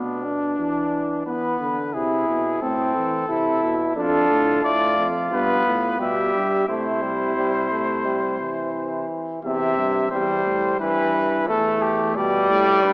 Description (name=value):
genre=classical, imitative canzona for brass ensemble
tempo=88 BPM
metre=4/4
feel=straight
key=C major from 4.0 s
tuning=A4 = 437 Hz
part: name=warm trumpet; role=melody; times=0.0-12.9 s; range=D4 to E5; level=-25 LUFS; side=left 1 dB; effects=none
part: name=clear trombone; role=accompaniment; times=0.0-12.9 s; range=C3 to E4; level=-22 LUFS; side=equal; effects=none
part: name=warm bass trombone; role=bass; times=0.0-12.9 s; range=E2 to E3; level=-28 LUFS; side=equal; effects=none
part: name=mellow flugelhorn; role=second line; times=4.0-9.1 s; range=E4 to A4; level=-24 LUFS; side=right 1 dB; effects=none
room=wet concert hall reverb, RT60 2.4 s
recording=small speaker sound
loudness=-19 LUFS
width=side -24 dB against mid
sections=0.0-9.4 A section; 9.4-12.9 B section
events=none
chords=0.0 Bmadd11; 1.3 E; 2.6 Am; 4.0 Dm/F; 5.3 G; 6.7 C; 9.4 C/E; 10.8 Em/G; 12.2 G